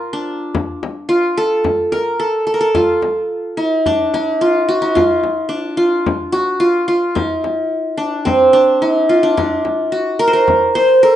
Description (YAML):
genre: Arabic maqam ensemble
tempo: 109 BPM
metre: 4/4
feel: straight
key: D maqam saba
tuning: A4 = 440 Hz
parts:
  - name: qanun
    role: melody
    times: 0.0-11.2 s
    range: C4 to C5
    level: -13 LUFS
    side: right 1 dB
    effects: none
  - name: frame drum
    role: percussion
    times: 0.5-10.9 s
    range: none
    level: -23 LUFS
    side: left 4 dB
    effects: none
  - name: breathy mellow low ney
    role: second line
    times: 10.8-11.2 s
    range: Bb4 to C5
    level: -13 LUFS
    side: left 4 dB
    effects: none
room: wet studio reverb, RT60 0.6 s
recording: rough home demo mix, nothing above 10.7 kHz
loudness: -13 LUFS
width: side -11 dB against mid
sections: 0.0-1.6 A section; 1.6-11.2 B section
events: none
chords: none